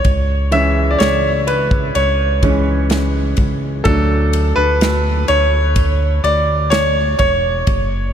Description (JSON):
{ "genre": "pop ballad", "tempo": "63 BPM", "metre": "4/4", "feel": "straight", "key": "unclear", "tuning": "A4 = 440 Hz", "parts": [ { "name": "clear concert grand piano", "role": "accompaniment", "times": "0.0-8.1 s", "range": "E3 to E5", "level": "-16 LUFS", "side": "right 1 dB", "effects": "none" }, { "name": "natural country drum kit", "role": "drums", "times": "0.0-7.9 s", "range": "kick drum, ride cymbal, snare drum", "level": "-20 LUFS", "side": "equal", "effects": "none" }, { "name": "chorused synth bass", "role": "bass", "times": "0.1-8.1 s", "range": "E1 to D2", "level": "-17 LUFS", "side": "equal", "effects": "none" } ], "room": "moderate huge ambient reverb, RT60 4.5 s", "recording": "dreamy mix soaked in reverb", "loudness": "-13 LUFS", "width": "side -9 dB against mid", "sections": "0.0-8.1 A section", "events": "grand piano solo 0.0-8.1", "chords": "0.1 C#m; 3.9 D" }